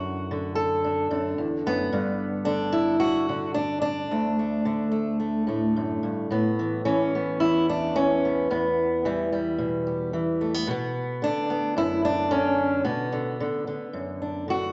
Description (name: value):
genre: folk, solo fingerstyle acoustic guitar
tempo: 110 BPM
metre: 4/4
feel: straight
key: D major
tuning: A4 = 440 Hz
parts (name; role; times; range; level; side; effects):
- fingerpicked steel-string acoustic guitar; solo; 0.0-14.7 s; D2 to A4; -26 LUFS; equal; none
room: wet large studio reverb, RT60 1.4 s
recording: nothing above 7.7 kHz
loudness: -26 LUFS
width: mono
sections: 0.0-6.3 A section; 6.3-14.7 B section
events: none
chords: 0.0 D/F#; 1.9 Gmaj7; 4.1 D5; 6.3 Aadd9; 8.5 Em; 10.7 Bm